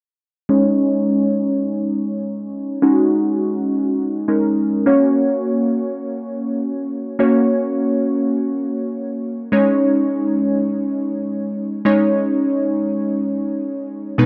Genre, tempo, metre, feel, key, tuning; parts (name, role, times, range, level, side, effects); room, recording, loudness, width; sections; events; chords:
pop; free time; A4 = 440 Hz
glassy digital keys; accompaniment; 0.5-14.3 s; B2 to C#5; -19 LUFS; equal; chorus, low-pass filter
light reverb; dry, close 1970s-style studio recording; -19 LUFS; mono
0.5-14.3 A section
filter sweep on synth keys 0.5-14.3
0.5 C#sus2; 4.9 F#; 9.5 C#sus2